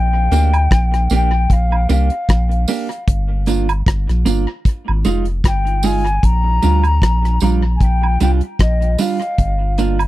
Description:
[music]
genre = roots reggae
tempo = 76 BPM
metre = 4/4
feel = swing 57% on 16ths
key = Bb mixolydian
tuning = A4 = 441 Hz
[part]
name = mellow hollow jazz flute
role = melody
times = 0.0-9.8 s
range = Eb5 to Bb5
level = -21 LUFS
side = left 2 dB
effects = tape echo
[part]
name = soft dub sub bass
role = bass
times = 0.0-10.1 s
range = F1 to D2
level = -15 LUFS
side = equal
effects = none
[part]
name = semi-hollow electric guitar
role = accompaniment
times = 0.3-10.0 s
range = G3 to G4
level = -20 LUFS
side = right 6 dB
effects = tube saturation, tape echo
[part]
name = damped 70s drum kit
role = drums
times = 0.3-10.1 s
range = hi-hat, kick drum, rim click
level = -16 LUFS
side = equal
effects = tape echo
[part]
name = tambourine and woodblock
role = percussion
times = 0.3-10.1 s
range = none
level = -26 LUFS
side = right 6 dB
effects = none
[sound]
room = little or no reverb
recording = dry, close 1970s-style studio recording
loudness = -14 LUFS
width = side -16 dB against mid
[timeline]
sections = 0.0-10.1 A section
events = none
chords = 0.0 Bb6; 3.1 Gm7; 4.7 Fm7; 6.2 Bb6; 9.4 Gm7

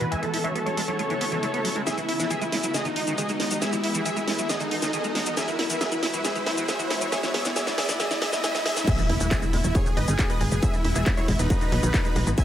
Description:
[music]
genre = uplifting trance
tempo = 137 BPM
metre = 4/4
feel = straight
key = E major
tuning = A4 = 436 Hz
[part]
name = dense compressed supersaw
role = melody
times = 0.0-12.4 s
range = D#4 to G#5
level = -28 LUFS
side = equal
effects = sidechain pumping, low-pass filter, tape echo
[part]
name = shimmering ambient pad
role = sustained chords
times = 0.0-12.4 s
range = C#3 to F#4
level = -32 LUFS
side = left 1 dB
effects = chorus, built-in reverb, sidechain pumping
[part]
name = liquid acid bass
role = arpeggios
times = 0.0-12.4 s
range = D#2 to E4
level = -33 LUFS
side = right 2 dB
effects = analog chorus, sidechain pumping, tape echo
[part]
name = techno drum kit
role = drums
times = 0.0-12.4 s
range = crash cymbal, handclaps, hi-hat, shaker, snare drum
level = -30 LUFS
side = left 1 dB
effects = sidechain pumping on hats, high-pass filter on hats, high-pass filter on snare, sidechain pumping on perc, high-pass filter on perc, sidechain pumping on cymbals, high-pass filter on cymbals, high-pass filter on room
[part]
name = riser, swell and impact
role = sound effects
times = 0.1-10.6 s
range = none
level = -33 LUFS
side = equal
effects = none
[part]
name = electronic kick drum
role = drums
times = 8.9-12.4 s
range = none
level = -24 LUFS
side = equal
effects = distortion
[part]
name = tight sequencer bass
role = bass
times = 9.1-12.4 s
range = E1 to B1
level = -24 LUFS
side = equal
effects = sidechain pumping
[sound]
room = light reverb, digital ambience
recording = high-pass filter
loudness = -22 LUFS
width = side -11 dB against mid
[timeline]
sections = 0.0-8.9 A section; 8.9-12.4 B section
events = build-up 0.0-8.9; riser 0.1-8.9; drum fill 1.9-8.9; swell 8.0-8.9; drop 8.9-12.4; impact 8.9-10.6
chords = 0.1 Aadd9; 1.9 Eadd9; 2.7 G#m; 3.6 Eadd9; 4.5 B; 5.4 Eadd9; 7.1 Aadd9; 8.9 Eadd9; 9.8 G#m; 10.6 Eadd9; 11.5 B

